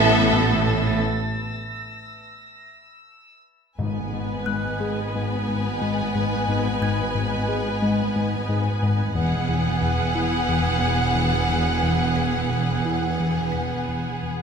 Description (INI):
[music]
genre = cinematic, suspense film score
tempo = 89 BPM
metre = 4/4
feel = straight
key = G# phrygian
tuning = A4 = 440 Hz
[part]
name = warm studio violin section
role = melody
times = 0.0-14.4 s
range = E5 to G#5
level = -29 LUFS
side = equal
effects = none
[part]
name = rich studio violin section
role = second line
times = 0.0-14.3 s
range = G#4 to B4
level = -28 LUFS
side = equal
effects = none
[part]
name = rich studio viola section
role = accompaniment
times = 0.0-14.3 s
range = B3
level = -30 LUFS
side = left 1 dB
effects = none
[part]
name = evolving wavetable pad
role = sustained chords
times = 0.0-14.4 s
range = B4 to A5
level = -35 LUFS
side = left 1 dB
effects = phaser, built-in reverb
[part]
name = fat analog bass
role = riff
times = 0.0-14.4 s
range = E2 to G#3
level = -26 LUFS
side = left 3 dB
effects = none
[part]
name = clear studio cello section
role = bass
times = 0.0-14.4 s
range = E2 to A2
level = -29 LUFS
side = right 3 dB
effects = none
[part]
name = rich studio double bass section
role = bass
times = 0.0-14.4 s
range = E1 to A1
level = -28 LUFS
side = right 3 dB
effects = none
[part]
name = rich studio violin section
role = texture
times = 0.0-3.4, 9.1-14.2 s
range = E6 to A6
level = -35 LUFS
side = left 1 dB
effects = none
[part]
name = timpani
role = percussion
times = 3.8-4.8 s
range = G#2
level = -36 LUFS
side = equal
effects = none
[part]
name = music box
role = texture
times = 4.5-14.4 s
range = F#6 to B6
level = -35 LUFS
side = left 2 dB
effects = none
[sound]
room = wet scoring stage reverb, RT60 1.8 s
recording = minimal, uncompressed stereo recording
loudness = -20 LUFS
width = side -6 dB against mid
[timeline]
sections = 0.0-3.8 A section; 3.8-14.4 A section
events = break 1.0-3.8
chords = 0.0 Asus2; 3.8 G#m; 9.2 Eadd9